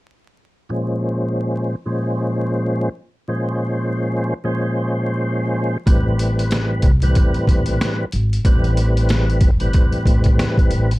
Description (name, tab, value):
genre	hip hop, boom-bap hip-hop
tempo	93 BPM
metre	4/4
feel	swing 59% on 16ths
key	unclear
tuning	A4 = 439 Hz
part	percussive tonewheel organ	accompaniment	0.7-10.9 s	A2 to C5	-20 LUFS	equal	overdrive, chorus vibrato, slow rotary speaker, cassette tape, low-pass filter
part	upright bass	bass	5.9-11.0 s	G1 to C2	-19 LUFS	equal	none
part	trip hop sampler-style drum kit	drums	5.9-11.0 s	hi-hat, kick drum, snare drum	-16 LUFS	equal	none
room	light reverb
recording	dark, warm production, vinyl crackle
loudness	-16 LUFS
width	side -19 dB against mid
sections	0.7-11.0 A section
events	filter sweep on tonewheel organ 0.7-11.0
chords	0.7 Bbm9; 5.9 Am9